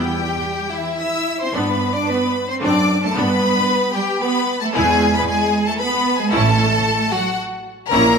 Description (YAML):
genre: quick classical-period movement for string orchestra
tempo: 113 BPM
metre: 3/4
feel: straight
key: unclear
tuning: A4 = 443 Hz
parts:
  - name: rich symphonic violin section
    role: melody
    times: 0.0-8.2 s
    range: E5 to E6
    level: -22 LUFS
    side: left 4 dB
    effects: none
  - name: rich chamber violin section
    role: second line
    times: 0.0-8.2 s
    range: E4 to E5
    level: -21 LUFS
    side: left 1 dB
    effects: none
  - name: rich studio viola section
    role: accompaniment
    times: 0.0-8.2 s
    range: B3 to E4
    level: -22 LUFS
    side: left 1 dB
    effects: none
  - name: clear chamber double bass section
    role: bass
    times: 0.0-8.2 s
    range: A1 to G2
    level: -23 LUFS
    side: right 3 dB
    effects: none
  - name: dark chamber cello section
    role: bass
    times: 0.0-8.2 s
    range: E3 to E4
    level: -23 LUFS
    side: right 3 dB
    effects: none
room: wet recital hall reverb, RT60 1.8 s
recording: none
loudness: -16 LUFS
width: side -6 dB against mid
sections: 0.0-8.2 A section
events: none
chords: 0.0 Em; 1.6 G; 2.6 D7/F#; 3.2 G; 4.7 E; 6.3 A